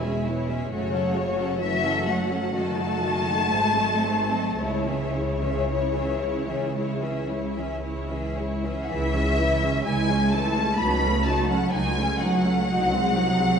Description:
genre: classical, slow romantic movement for string orchestra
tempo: 54-68 BPM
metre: 4/4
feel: rubato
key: C# minor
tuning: A4 = 435 Hz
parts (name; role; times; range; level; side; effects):
- warm symphonic violin section; melody; 0.0-13.6 s; C#5 to B5; -27 LUFS; left 4 dB; none
- bright symphonic violin section; second line; 0.0-13.6 s; E4 to B5; -31 LUFS; left 2 dB; none
- rich symphonic viola section; accompaniment; 0.0-13.6 s; D#3 to F#4; -28 LUFS; equal; none
- rich symphonic cello section; bass; 0.0-13.6 s; C#3 to B3; -29 LUFS; right 2 dB; none
- rich symphonic double bass section; bass; 0.0-13.5 s; E1 to C#2; -29 LUFS; right 2 dB; none
room: wet concert hall reverb, RT60 2.1 s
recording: heard from further back in the room, nothing above 10.6 kHz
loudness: -22 LUFS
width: side -6 dB against mid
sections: 0.0-8.9 A section; 8.9-13.6 A section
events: none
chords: 0.0 C#m/E; 0.7 F#m; 2.5 D#dim/F#; 3.5 G#7b9; 4.6 C#m; 10.8 D#m7b5/C#; 12.7 G#7/B#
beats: | 0.71 1.61 2.54 3.53 | 4.60 5.69 6.75 7.83 | 8.89 9.86 10.79 11.73 | 12.69

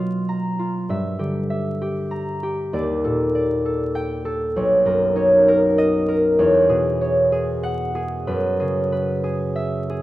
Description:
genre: classical, solo harp piece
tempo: 65 BPM (dotted quarters)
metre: 6/8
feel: rubato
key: unclear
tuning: A4 = 440 Hz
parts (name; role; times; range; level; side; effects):
- concert harp; solo; 0.0-10.0 s; B1 to A#5; -18 LUFS; equal; none
room: moderate recital hall reverb, RT60 1.7 s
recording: vinyl crackle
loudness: -18 LUFS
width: side -16 dB against mid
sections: 0.0-10.0 A section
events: none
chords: 0.0 Bmaj7#11; 0.9 Gm6; 2.7 Ebmaj7#11; 4.6 Bmaj9; 6.4 E69; 8.3 F#9sus4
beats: | 0.89 1.81 | 2.73 3.66 | 4.57 5.48 | 6.39 7.32 | 8.27 9.23

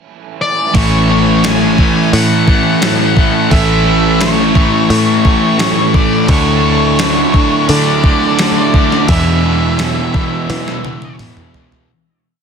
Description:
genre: rock, shoegaze and dream pop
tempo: 86 BPM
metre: 4/4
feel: straight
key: A major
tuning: A4 = 440 Hz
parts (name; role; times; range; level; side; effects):
- octave-fuzz lead guitar; melody; 0.4-11.2 s; C#5 to G#5; -18 LUFS; left 2 dB; distortion, analog delay
- crunchy overdriven guitar; riff; 0.7-11.9 s; E2 to E4; -16 LUFS; right 8 dB; reverse reverb
- thick fuzz guitar; riff; 0.7-11.9 s; E2 to D4; -17 LUFS; left 11 dB; distortion, lush chorus
- gated 80s digital drum machine; drums; 0.7-11.9 s; hi-hat, kick drum, snare drum, toms; -14 LUFS; equal; gated reverb, gated reverb snare
- cranked stack guitar; riff; 0.8-11.9 s; E2 to D4; -18 LUFS; equal; overdrive
- picked electric bass; bass; 0.8-11.9 s; A1 to E3; -17 LUFS; equal; none
room: moderate concert hall reverb, RT60 2.5 s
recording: dense, heavily limited modern master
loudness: -9 LUFS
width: side -6 dB against mid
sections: 0.0-0.8 pickup bar; 0.8-11.9 verse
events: fade-out 9.1-11.9; drum fill 10.5-11.9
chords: 0.0 N.C.; 0.8 A; 6.3 Dsus2; 9.1 E7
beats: 0.06 | 0.75 1.44 2.13 2.82 | 3.52 4.21 4.90 5.60 | 6.30 7.00 7.69 8.39 | 9.10 9.80 10.50 11.20

